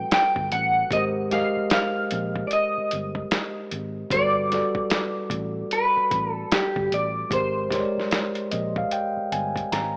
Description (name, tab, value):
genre	R&B, neo-soul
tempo	75 BPM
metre	4/4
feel	swing 62% on 16ths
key	unclear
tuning	A4 = 440 Hz
part	clean electric guitar	melody	0.0-9.7 s	G4 to G5	-23 LUFS	equal	analog chorus, slapback echo
part	mellow tine electric piano	accompaniment	0.0-10.0 s	G3 to Bb5	-27 LUFS	equal	none
part	vintage muted fingered electric bass	bass	0.0-10.0 s	G1 to Bb1	-32 LUFS	equal	none
part	dusty soul sampler-style drum kit	drums	0.1-10.0 s	hi-hat, kick drum, snare drum	-26 LUFS	equal	none
room	light reverb, digital ambience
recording	rough home demo mix, AM radio sound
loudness	-21 LUFS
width	side -35 dB against mid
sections	0.0-10.0 A section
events	tine electric piano fill 8.1-10.0; drum fill 9.7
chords	0.0 Gmaj9; 0.9 Abmaj9; 4.1 Gmaj9; 7.3 Abmaj9